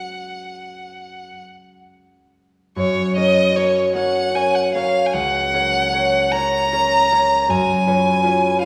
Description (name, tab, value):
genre	classical, romantic duo for violin and harp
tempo	44-54 BPM (dotted quarters)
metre	12/8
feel	rubato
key	F# major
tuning	A4 = 441 Hz
part	rich violin	melody	0.0-8.7 s	C#5 to A#5	-21 LUFS	equal	none
part	concert harp	accompaniment	0.0-8.7 s	C#2 to C#5	-21 LUFS	equal	none
room	wet scoring stage reverb, RT60 1.9 s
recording	heard from further back in the room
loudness	-18 LUFS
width	mono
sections	0.0-2.8 A section; 2.8-8.7 B section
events	none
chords	0.0 F#; 7.5 C#7/F#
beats	0.10 1.44 | 2.76 3.95 5.12 6.30 | 7.47 8.60